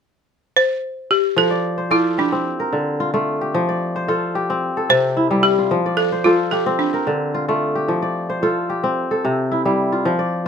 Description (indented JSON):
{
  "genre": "west african traditional, West African string and xylophone music",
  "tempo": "110 BPM",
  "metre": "4/4",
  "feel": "straight",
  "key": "F major",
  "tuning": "A4 = 440 Hz",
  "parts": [
    { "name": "balafon", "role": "melody", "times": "0.6-7.6 s", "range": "D4 to C5", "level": "-18 LUFS", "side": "equal", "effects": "none" },
    { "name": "kora", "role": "arpeggios", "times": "1.4-10.5 s", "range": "C3 to D5", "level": "-18 LUFS", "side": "left 1 dB", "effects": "none" }
  ],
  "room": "light reverb",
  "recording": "none",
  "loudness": "-17 LUFS",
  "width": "side -6 dB against mid",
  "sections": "0.0-1.4 A section; 1.4-10.1 B section",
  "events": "none",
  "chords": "0.0 N.C.; 1.4 F; 2.5 Dm; 3.5 F; 4.6 C; 5.7 F; 6.8 Dm; 7.9 F; 9.0 C",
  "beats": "0.28 0.82 | 1.37 1.91 2.45 3.00 | 3.54 4.08 4.63 5.17 | 5.71 6.26 6.80 7.34 | 7.88 8.43 8.97 9.51 | 10.05"
}